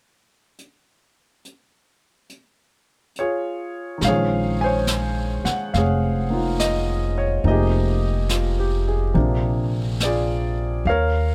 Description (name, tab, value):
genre	jazz ballad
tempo	70 BPM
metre	4/4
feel	swing 66% on 8ths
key	Bb minor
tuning	A4 = 440 Hz
part	jazz brush drum kit	drums	0.6-11.3 s	brushed snare drum, hi-hat, snare drum	-32 LUFS	equal	none
part	clear concert grand piano	accompaniment	3.2-11.3 s	C3 to Ab5	-25 LUFS	equal	none
part	upright bass	bass	4.0-11.3 s	F1 to Eb2	-24 LUFS	equal	none
room	little or no reverb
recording	close, detailed microphones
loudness	-22 LUFS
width	mono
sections	0.6-4.0 A section; 4.0-11.3 B section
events	none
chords	0.6 Fm; 4.0 Bbm9; 7.4 Fm9; 9.2 Bb7